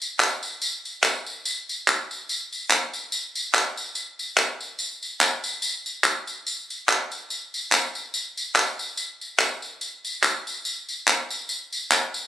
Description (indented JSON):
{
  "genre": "gospel",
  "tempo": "144 BPM",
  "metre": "4/4",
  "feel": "swing 55% on 8ths",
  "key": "none",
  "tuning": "none",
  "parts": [
    { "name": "tambourine and handclaps", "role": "percussion", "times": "0.0-12.2 s", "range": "none", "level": "-22 LUFS", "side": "equal", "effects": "none" }
  ],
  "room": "moderate echo chamber reverb, RT60 1.2 s",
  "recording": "recorded on a phone in the room, club reverb",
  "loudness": "-23 LUFS",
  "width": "side -12 dB against mid",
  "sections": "0.0-12.3 A section",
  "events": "none",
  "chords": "none",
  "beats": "0.20 0.62 1.04 | 1.46 1.87 2.29 2.71 | 3.12 3.54 3.96 4.38 | 4.80 5.21 5.63 6.05 | 6.47 6.89 7.31 7.72 | 8.14 8.56 8.98 9.40 | 9.82 10.23 10.65 11.07 | 11.49 11.91"
}